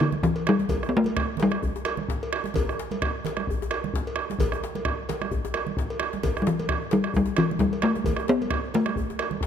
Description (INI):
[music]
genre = west african traditional, West African drum ensemble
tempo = 131 BPM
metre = 4/4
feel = swing 56% on 16ths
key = G major pentatonic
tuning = A4 = 441 Hz
[part]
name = talking drum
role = melody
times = 0.0-2.3, 6.4-9.5 s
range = D3 to B3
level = -23 LUFS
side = left 2 dB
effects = none
[part]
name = bombo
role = percussion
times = 0.0-9.5 s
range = none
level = -28 LUFS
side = right 2 dB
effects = none
[part]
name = cowbell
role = percussion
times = 0.0-9.3 s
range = none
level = -35 LUFS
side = left 1 dB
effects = none
[part]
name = congas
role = percussion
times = 0.1-9.4 s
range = none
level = -35 LUFS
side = right 8 dB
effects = none
[part]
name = djembe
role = percussion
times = 0.2-9.5 s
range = none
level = -34 LUFS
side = left 4 dB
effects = none
[sound]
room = moderate concert hall reverb, RT60 1.8 s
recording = close, detailed microphones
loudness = -23 LUFS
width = side -8 dB against mid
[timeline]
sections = 0.0-9.5 A section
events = none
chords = none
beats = 0.23 | 0.70 1.16 1.63 2.09 | 2.55 3.01 3.48 3.94 | 4.40 4.86 5.32 5.77 | 6.23 6.69 7.15 7.60 | 8.06 8.51 8.97 9.42